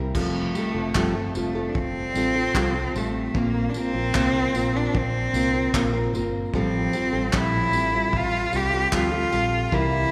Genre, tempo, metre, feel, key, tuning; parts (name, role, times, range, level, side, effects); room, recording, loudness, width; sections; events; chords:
acoustic pop; 75 BPM; 4/4; straight; F major; A4 = 440 Hz
nylon-string guitar; accompaniment; 0.0-10.1 s; A2 to Bb4; -29 LUFS; equal
vintage muted fingered electric bass; bass; 0.0-10.1 s; F1 to D2; -32 LUFS; equal
cloth-damped thuddy drum kit; drums; 0.1-9.9 s; crash cymbal, handclaps, kick drum, tambourine; -32 LUFS; equal
rich cello; melody; 0.2-10.1 s; A3 to G4; -27 LUFS; equal
wet church reverb, RT60 2.7 s; recorded in a church or concert hall; -23 LUFS; mono
0.1-10.1 A section
0.1 Fadd9; 3.3 Bbsus2; 6.5 Fadd9/A